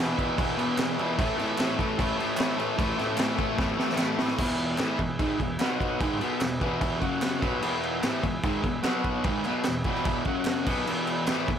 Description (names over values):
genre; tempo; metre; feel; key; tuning
garage rock duo or trio; 149 BPM; 4/4; straight; E major from 4.4 s; A4 = 437 Hz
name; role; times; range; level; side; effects
overdriven combo organ; sustained chords; 0.0-11.6 s; F#4 to B5; -36 LUFS; right 2 dB; none
fuzz guitar; riff; 0.0-11.6 s; E2 to B3; -27 LUFS; left 1 dB; distortion
raw garage drum kit; drums; 0.2-11.6 s; crash cymbal, kick drum, snare drum; -29 LUFS; equal; none
group handclap; percussion; 0.8-11.4 s; none; -40 LUFS; right 2 dB; none
room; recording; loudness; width
light reverb, small room reverb; none; -24 LUFS; side -8 dB against mid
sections
0.0-4.4 A section; 4.4-11.6 B section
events
drum fill 3.6-4.4; transistor combo organ fill 7.0-7.6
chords
0.0 E; 1.2 A; 4.4 E; 5.6 B5; 6.0 E; 7.0 F#5; 7.4 E; 8.8 B5; 9.2 E; 10.3 F#5; 10.7 E